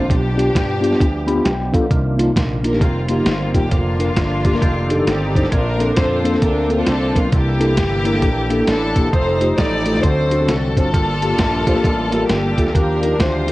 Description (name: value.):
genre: uptempo gospel.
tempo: 133 BPM.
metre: 4/4.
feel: swing 62% on 8ths.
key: Bb major.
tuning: A4 = 441 Hz.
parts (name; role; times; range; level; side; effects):
warm studio string section; melody; 0.0-13.5 s; Bb3 to D5; -21 LUFS; left 1 dB; tape echo.
mellow tine electric piano; accompaniment; 0.0-13.5 s; G2 to B5; -20 LUFS; left 1 dB; medium stereo tremolo.
dark French horn section; sustained chords; 0.0-13.5 s; D3 to D5; -30 LUFS; equal; none.
percussive tonewheel organ; sustained chords; 0.0-13.5 s; D3 to D5; -27 LUFS; right 2 dB; slow rotary speaker, overdrive, chorus vibrato.
slap bass with an envelope filter; bass; 0.0-13.5 s; E1 to G2; -22 LUFS; equal; none.
lo-fi sampler-style drum kit; drums; 0.1-13.5 s; hi-hat, kick drum, snare drum; -19 LUFS; equal; none.
room: little or no reverb.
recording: worn, warbling old tape, cassette tape, warbly pitch drift.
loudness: -14 LUFS.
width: side -18 dB against mid.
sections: 0.0-13.5 A section.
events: tine electric piano fill 1.0-1.9.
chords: 0.1 G7/B; 1.9 Cm11; 2.8 F9sus4; 3.7 Bb/F; 4.6 F13; 5.5 Bbmaj9; 7.3 C13; 9.1 F9; 10.0 D7; 10.9 Gm9; 12.7 Ebmaj9.